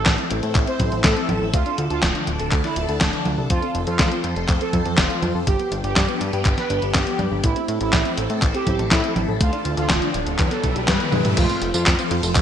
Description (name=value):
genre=italo disco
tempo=122 BPM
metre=4/4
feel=straight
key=A minor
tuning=A4 = 438 Hz
part: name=analog synth brass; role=melody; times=0.0-12.1 s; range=D4 to C5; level=-26 LUFS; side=right 2 dB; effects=chorus, cassette tape, ping-pong delay
part: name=phased string machine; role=sustained chords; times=0.0-12.4 s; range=D3 to C5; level=-28 LUFS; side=equal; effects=ensemble chorus, phaser
part: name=soft round pluck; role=arpeggios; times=0.0-12.4 s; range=G3 to A4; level=-30 LUFS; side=left 2 dB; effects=chorus, ping-pong delay
part: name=fat analog bass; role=bass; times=0.0-12.4 s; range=D1 to A2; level=-25 LUFS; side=equal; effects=none
part: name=clean 12-bit digital drum machine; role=drums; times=0.1-12.4 s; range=congas, crash cymbal, handclaps, hi-hat, snare drum, tambourine, toms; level=-22 LUFS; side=equal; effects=studio reverb, gated reverb
part: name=electronic kick drum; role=drums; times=0.1-12.4 s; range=none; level=-22 LUFS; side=equal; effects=studio reverb
part: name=riser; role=sound effects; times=9.3-11.4 s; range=none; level=-31 LUFS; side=right 1 dB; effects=none
room=moderate plate reverb, RT60 1.8 s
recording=bright 1980s-style digital production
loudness=-18 LUFS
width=side -9 dB against mid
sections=0.0-11.4 A section; 11.4-12.4 B section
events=riser 9.3-11.4; drum fill 11.0-11.4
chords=0.0 Am; 1.5 Dm; 3.5 F; 5.5 G; 7.4 Am; 9.4 Dm; 10.4 Em; 11.4 F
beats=0.06 0.55 1.04 | 1.54 2.03 2.52 3.01 | 3.50 4.00 4.49 4.98 | 5.47 5.96 6.46 6.95 | 7.44 7.93 8.42 8.91 | 9.41 9.90 10.39 10.88 | 11.37 11.87 12.36